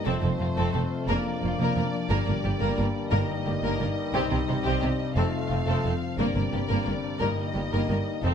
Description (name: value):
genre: cinematic, heroic adventure film score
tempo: 118 BPM (dotted quarters)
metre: 12/8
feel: straight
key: unclear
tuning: A4 = 439 Hz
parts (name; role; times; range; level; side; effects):
- warm symphonic violin section; melody; 0.0-8.3 s; C5 to F5; -37 LUFS; left 3 dB; none
- warm symphonic violin section; second line; 0.0-8.3 s; Eb4 to Bb4; -33 LUFS; left 2 dB; none
- bright trombone section; sustained chords; 0.0-8.3 s; F2 to Bb3; -35 LUFS; right 4 dB; none
- dark French horn section; sustained chords; 0.0-8.3 s; Bb3 to F4; -35 LUFS; left 5 dB; none
- concert harp; arpeggios; 0.0-8.3 s; F2 to Bb4; -34 LUFS; left 10 dB; none
- warm symphonic viola section; accompaniment; 0.1-8.3 s; Bb3 to C4; -34 LUFS; equal; none
- rich symphonic cello section; bass; 0.1-8.3 s; F2 to C3; -30 LUFS; right 2 dB; none
- rich symphonic double bass section; bass; 0.1-8.3 s; F1 to C2; -30 LUFS; right 2 dB; none
- timpani; percussion; 3.1-3.6, 7.2-7.7 s; G2; -36 LUFS; left 1 dB; none
room: moderate recital hall reverb, RT60 1.5 s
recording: none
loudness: -24 LUFS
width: side -8 dB against mid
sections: 0.0-8.3 A section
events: build-up 0.0-8.3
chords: 0.1 F; 1.1 Bb/F; 2.1 Gm; 3.1 Eb/G; 4.1 Cm; 5.2 F; 6.2 Gm; 7.2 Eb/G